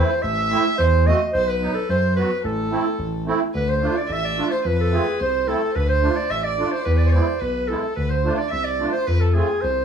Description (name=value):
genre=klezmer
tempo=108 BPM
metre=2/4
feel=straight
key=A dorian sharp4, D dorian sharp4 from 3.5 s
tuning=A4 = 439 Hz
part: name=clear clarinet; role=melody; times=0.0-9.8 s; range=G#4 to E5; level=-23 LUFS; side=right 2 dB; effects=plate reverb
part: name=rich violin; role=second line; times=0.0-9.8 s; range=G#4 to E5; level=-28 LUFS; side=left 2 dB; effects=none
part: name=musette accordion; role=accompaniment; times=0.0-9.5 s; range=F#3 to F#4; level=-24 LUFS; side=right 4 dB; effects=none
part: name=smooth synth bass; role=bass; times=0.2-9.8 s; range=A1 to F#2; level=-22 LUFS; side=equal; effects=none
room=wet studio reverb, RT60 0.5 s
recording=heard from further back in the room, small room ambience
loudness=-18 LUFS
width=side -7 dB against mid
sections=0.0-3.5 A section; 3.5-9.8 B section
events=none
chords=0.0 Am; 1.3 B5; 2.4 Am; 3.5 Dm; 4.6 F; 5.8 Dm; 6.9 E; 8.0 Dm; 9.1 F